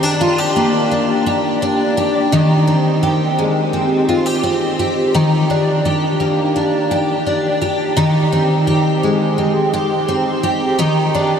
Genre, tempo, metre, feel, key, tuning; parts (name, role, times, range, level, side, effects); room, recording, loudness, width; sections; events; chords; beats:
dream pop; 85 BPM; 4/4; straight; Ab lydian; A4 = 440 Hz
picked twelve-string acoustic guitar; solo; 0.0-11.4 s; Eb3 to G4; -14 LUFS; equal; ensemble chorus, diffuse ambient delay
wet huge ambient reverb, RT60 7.2 s; dreamy mix soaked in reverb; -14 LUFS; side -7 dB against mid
0.0-11.4 A section
0.0 Ebmaj7; 2.3 Abmaj7; 5.1 Ebmaj7; 8.0 Abmaj7; 10.8 Ebmaj7
0.20 0.91 1.61 | 2.32 3.03 3.73 4.44 | 5.14 5.85 6.56 7.26 | 7.97 8.67 9.38 10.09 | 10.79